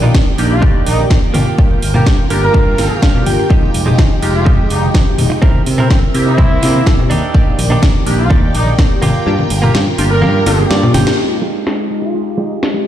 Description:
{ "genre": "filtered disco house", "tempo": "125 BPM", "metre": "4/4", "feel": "straight", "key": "F dorian", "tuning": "A4 = 440 Hz", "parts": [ { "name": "funky polysynth comp", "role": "accompaniment", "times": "0.0-12.9 s", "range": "Eb3 to D5", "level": "-19 LUFS", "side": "equal", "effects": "chorus, phaser, sidechain pumping, low-pass filter" }, { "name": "phased string machine", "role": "sustained chords", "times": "0.0-12.9 s", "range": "Eb3 to G5", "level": "-24 LUFS", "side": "right 1 dB", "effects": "ensemble chorus, phaser, sidechain pumping, low-pass filter" }, { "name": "direct-recorded clean electric guitar", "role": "riff", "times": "0.0-12.9 s", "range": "Ab3 to G5", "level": "-22 LUFS", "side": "right 4 dB", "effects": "sidechain pumping, low-pass filter" }, { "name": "growling fingered electric bass", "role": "bass", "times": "0.0-11.0 s", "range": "F1 to C3", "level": "-16 LUFS", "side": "equal", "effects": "overdrive, sidechain pumping, low-pass filter" }, { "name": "egg shaker and congas", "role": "percussion", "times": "0.0-11.2 s", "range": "none", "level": "-19 LUFS", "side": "left 2 dB", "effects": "sidechain pumping on perc, low-pass filter on perc" }, { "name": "electronic kick drum", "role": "drums", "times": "0.1-8.9 s", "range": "none", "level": "-12 LUFS", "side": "equal", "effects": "studio ambience" }, { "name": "house drum kit", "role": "drums", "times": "0.1-12.7 s", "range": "crash cymbal, hi-hat, snare drum", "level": "-21 LUFS", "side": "equal", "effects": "sidechain pumping on hats, low-pass filter on hats, studio ambience, low-pass filter on snare, sidechain pumping on cymbals, low-pass filter on cymbals" }, { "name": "clear horn section", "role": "melody", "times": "0.5-12.5 s", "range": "C4 to Bb4", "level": "-21 LUFS", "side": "right 1 dB", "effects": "vintage 12-bit sampler grit, sidechain pumping, low-pass filter, tape echo" } ], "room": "light reverb", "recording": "played on a big sound system in a bare room, large studio reverb", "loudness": "-10 LUFS", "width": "side -11 dB against mid", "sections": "0.0-11.2 A section; 11.2-12.9 B section", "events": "clean electric guitar fill 2.1-3.5, 10.5-11.2; kick drops out 9.3-11.2; drum fill 10.9; band accent 11.1; filter sweep on drum 11.2-12.9; filter sweep 11.2-12.9", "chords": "0.0 Ebmaj7; 1.3 Gm7; 3.5 Fm9; 5.4 C7; 7.1 Ebmaj7; 9.0 Gm7; 11.2 Fm9" }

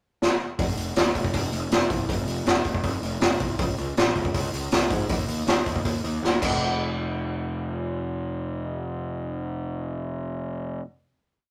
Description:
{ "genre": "punk rock", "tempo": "159 BPM", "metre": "4/4", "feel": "straight", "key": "unclear", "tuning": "A4 = 440 Hz", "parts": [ { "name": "raw garage drum kit", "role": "drums", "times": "0.2-6.5 s", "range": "crash cymbal, hi-hat, kick drum, snare drum", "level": "-26 LUFS", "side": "equal", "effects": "none" }, { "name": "fuzz picked electric bass", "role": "bass", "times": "0.6-10.8 s", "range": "F1 to Ab2", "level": "-31 LUFS", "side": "equal", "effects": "overdrive" } ], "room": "light reverb", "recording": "rough rehearsal-room recording, tube saturation", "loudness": "-26 LUFS", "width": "mono", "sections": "0.0-0.6 pickup bar; 0.6-6.6 verse; 6.6-9.7 final hit", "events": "drum fill 0.2-0.6, 6.2-6.6", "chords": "none" }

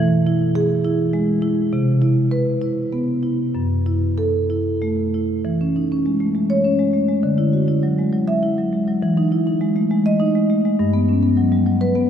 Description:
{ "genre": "classical, contemporary piece for solo marimba", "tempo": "93-105 BPM", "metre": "3/4", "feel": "rubato", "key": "E major", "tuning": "A4 = 440 Hz", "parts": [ { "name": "marimba with soft mallets", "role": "solo", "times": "0.0-12.1 s", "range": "F#2 to E5", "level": "-16 LUFS", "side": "equal", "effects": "none" } ], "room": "wet cathedral reverb, RT60 5.3 s", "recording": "recorded in a church or concert hall", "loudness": "-17 LUFS", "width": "side -9 dB against mid", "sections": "0.0-5.4 A section; 5.4-12.1 B section", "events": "none", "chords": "0.0 E; 1.7 Cmaj7; 3.5 F#m7; 5.4 E6; 7.2 Dadd9; 9.0 Emaj7; 10.8 Gmaj7" }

